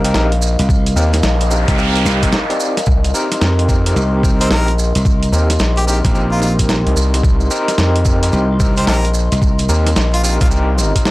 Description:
glitch hop; 110 BPM; 4/4; swing 64% on 16ths; C minor; A4 = 442 Hz
dark analog pad; sustained chords; 0.0-11.1 s; Bb4 to C6; -24 LUFS; left 2 dB; chorus, sidechain pumping
overdriven tine electric piano; stabs; 0.0-11.1 s; C4 to D5; -21 LUFS; equal; medium tremolo, sidechain pumping, analog delay
slap bass; bass; 0.0-9.7 s; Bb1 to C2; -16 LUFS; equal
boom bap sampler-style drum kit; drums; 0.0-11.1 s; hi-hat, snare drum; -20 LUFS; equal
maracas; percussion; 0.0-11.1 s; -27 LUFS; right 4 dB
gritty driven synth bass; bass; 0.1-10.9 s; Bb1 to F2; -14 LUFS; equal
electronic kick drum; drums; 0.7-11.0 s; -15 LUFS; equal
noise sweep; sound effects; 1.2-2.9 s; -22 LUFS; right 1 dB
bright harmonica; melody; 4.4-10.5 s; F4 to C5; -23 LUFS; equal; analog delay
little or no reverb; dry, gritty hardware recording, transformer saturation; -12 LUFS; side -18 dB against mid
0.0-11.1 A section
noise sweep 1.2-2.9; break 2.3-2.9
0.0 Cm7

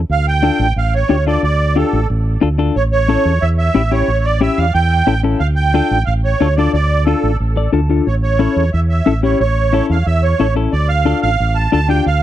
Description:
latin, cumbia; 180 BPM; 4/4; straight; D harmonic minor; A4 = 440 Hz
fingered electric bass; bass; 0.0-12.2 s; A1 to E2; -15 LUFS; right 1 dB
musette accordion; melody; 0.1-12.2 s; A4 to A5; -18 LUFS; right 4 dB; tape echo
clean electric guitar; accompaniment; 0.4-12.1 s; C#4 to A5; -16 LUFS; left 7 dB
little or no reverb; dry, close 1970s-style studio recording; -12 LUFS; side -12 dB against mid
0.1-12.2 A section
clean electric guitar fill 7.4-8.1
0.1 Dm; 2.8 A7; 5.4 Dm; 8.1 A; 10.7 Dm

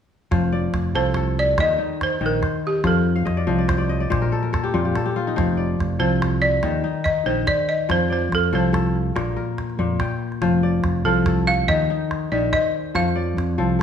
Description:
west african traditional, West African string and xylophone music; 95 BPM (dotted quarters); 12/8; straight; F mixolydian; A4 = 440 Hz
kora; arpeggios; 0.3-13.8 s; Bb2 to G5; -22 LUFS; left 4 dB
fingered electric bass; bass; 0.3-13.8 s; F1 to F2; -24 LUFS; right 1 dB
calabash; percussion; 0.3-13.7 s; -28 LUFS; right 2 dB
balafon; melody; 1.0-13.8 s; G4 to F5; -22 LUFS; right 2 dB
wet recital hall reverb, RT60 1.4 s; small room ambience; -18 LUFS; side -8 dB against mid
0.3-13.8 A section
kora fill 3.2-5.4
0.3 F; 1.6 Eb5; 2.8 F; 4.1 Bb5; 5.4 F; 6.6 Eb5; 7.9 F; 9.2 Bb5; 10.4 F; 11.7 Eb5; 12.9 F

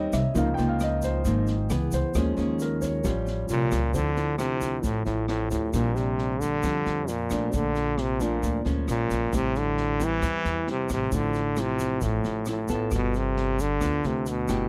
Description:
bossa nova; 134 BPM; 4/4; straight; D minor from 3.9 s; A4 = 440 Hz
nylon-string guitar; accompaniment; 0.0-14.7 s; Ab2 to A4; -33 LUFS; equal
warm baby grand piano; accompaniment; 0.0-9.3, 14.0-14.7 s; Fb3 to G5; -34 LUFS; equal
upright bass; bass; 0.0-14.7 s; G1 to F2; -32 LUFS; equal
open jazz drum kit; drums; 0.1-14.6 s; kick drum, rim click, snare drum; -36 LUFS; equal
egg shaker; percussion; 0.1-14.7 s; -46 LUFS; equal
brilliant trombone; melody; 3.5-14.7 s; A2 to E3; -29 LUFS; equal
little or no reverb; dry, close 1970s-style studio recording; -26 LUFS; mono
0.0-3.9 A section; 3.9-14.7 B section
grand piano solo 0.0-3.9
0.4 Db69; 1.7 Dbm7; 2.1 Eb7sus4; 3.0 A7alt; 3.9 Dm9; 5.7 Bb69; 7.5 Bbmaj7; 8.9 Bbm7; 9.3 Am7; 11.1 Dm9/A; 12.9 G9

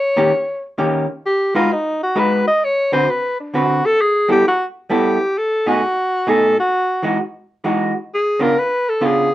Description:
jazz; 131 BPM; 3/4; swing 66% on 8ths; E major; A4 = 439 Hz
breathy alto saxophone; melody; 0.0-9.3 s; D4 to D#5; -16 LUFS; left 1 dB
vintage hollow-body jazz guitar; accompaniment; 0.2-9.3 s; B2 to B4; -17 LUFS; right 1 dB
moderate studio reverb, RT60 0.6 s; worn, warbling old tape, cassette tape, warbly pitch drift; -15 LUFS; side -14 dB against mid
0.0-7.2 A section; 7.2-9.3 B section
alto saxophone solo 7.2-9.3
0.3 D#7; 1.7 G#m7; 3.1 D13; 4.4 G69; 5.8 B6; 7.2 Emaj9; 8.6 C#7b9

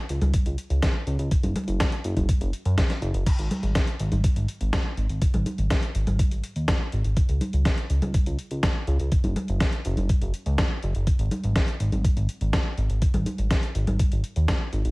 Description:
italo disco; 123 BPM; 4/4; straight; A4 = 440 Hz
chorused synth bass; bass; 0.1-14.9 s; F#1 to F#2; -24 LUFS; equal; tube saturation
dusty soul sampler-style drum kit; drums; 0.1-14.9 s; congas, crash cymbal, hi-hat, snare drum; -29 LUFS; equal; studio reverb, gated reverb
electronic kick drum; drums; 0.3-14.6 s; -23 LUFS; equal; studio reverb
little or no reverb; vinyl crackle; -22 LUFS; side -24 dB against mid
0.0-14.9 A section

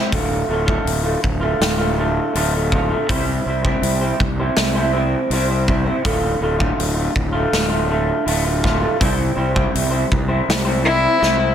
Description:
quiet-loud alternative rock; 81 BPM; 4/4; straight; D minor; A4 = 440 Hz
electric guitar through a small old amp; arpeggios; 0.0-11.5 s; D2 to C5; -20 LUFS; right 1 dB; lush chorus, slapback echo
fuzz fingered electric bass; bass; 0.1-11.5 s; D1 to C2; -22 LUFS; equal; overdrive
big rock drum kit; drums; 0.1-11.4 s; hi-hat, kick drum, snare drum; -22 LUFS; equal
rich cello; melody; 10.9-11.5 s; E4; -15 LUFS; left 3 dB; slapback echo
light reverb, studio reverb; -16 LUFS; side -9 dB against mid
0.0-11.5 A section
drum fill 11.2-11.5
0.1 Dm; 3.1 C; 6.0 Dm; 9.0 C

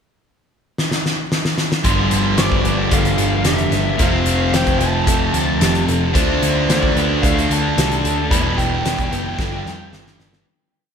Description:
rock, shoegaze and dream pop; 112 BPM; 4/4; straight; A4 = 439 Hz
loose indie drum kit; drums; 0.8-10.5 s; hi-hat, kick drum, snare drum; -20 LUFS; equal
distorted electric guitar; riff; 1.8-10.5 s; E2 to D4; -22 LUFS; right 1 dB; overdrive
raw garage guitar; riff; 1.8-10.5 s; G2 to F4; -24 LUFS; right 8 dB; overdrive, reverse reverb
vintage muted picked electric bass; bass; 1.8-10.4 s; E1 to F2; -22 LUFS; equal
mellow electric guitar; arpeggios; 1.9-10.5 s; G4 to C6; -27 LUFS; left 3 dB; wide subtle chorus, analog delay
thick fuzz guitar; riff; 1.9-10.5 s; E2 to D4; -23 LUFS; left 8 dB; distortion, wide subtle chorus
biting lead guitar; melody; 2.4-9.9 s; D5 to B5; -25 LUFS; equal; overdrive, analog delay
moderate plate reverb, RT60 2.5 s; dreamy mix soaked in reverb; -15 LUFS; side -7 dB against mid
0.0-1.8 pickup bar; 1.8-10.5 A section
drum fill 0.8-1.8, 9.4-10.5; fade-out 8.3-10.5
0.0 N.C.; 1.8 F; 6.2 Dm7; 8.3 Em7; 9.4 G7

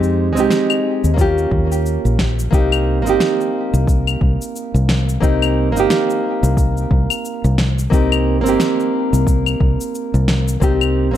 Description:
sunset chillout; 89 BPM; 4/4; swing 58% on 16ths; A4 = 440 Hz
nylon-string guitar; accompaniment; 0.0-11.2 s; Ab3 to G4; -18 LUFS; moving between left 4 dB and right 5 dB; auto-pan, digital delay
fingered electric bass; bass; 0.0-11.2 s; G1 to F2; -17 LUFS; equal
electronic cabasa, snare drum and claves; drums; 0.0-10.9 s; -22 LUFS; left 2 dB
electronic kick drum; drums; 1.2-10.8 s; -17 LUFS; equal
light reverb; dark, warm production; -14 LUFS; side -11 dB against mid
0.0-2.5 A section; 2.5-11.2 B section
0.0 Fm9; 1.2 Eb9; 2.5 Eb6/G

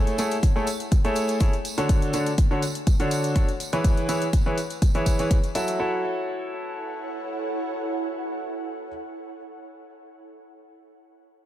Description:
piano house; 123 BPM; 4/4; straight; F# minor; A4 = 438 Hz
clear baby grand piano; riff; 0.0-8.9 s; D3 to E5; -26 LUFS; equal; sidechain pumping, ping-pong delay
ethereal airy pad; texture; 0.0-9.1 s; A3 to G#5; -35 LUFS; right 2 dB; ensemble chorus, built-in reverb, sidechain pumping
electronic hi-hat; drums; 0.1-5.8 s; -36 LUFS; left 5 dB; overdrive
tambourine; percussion; 0.1-5.8 s; -38 LUFS; right 6 dB
electronic kick drum; drums; 0.4-5.4 s; -21 LUFS; equal
little or no reverb; -22 LUFS; side -13 dB against mid
0.0-5.8 A section; 5.8-9.7 B section
0.0 Amaj7; 1.6 Dmaj7; 3.6 C#m7/E; 5.8 F#m7

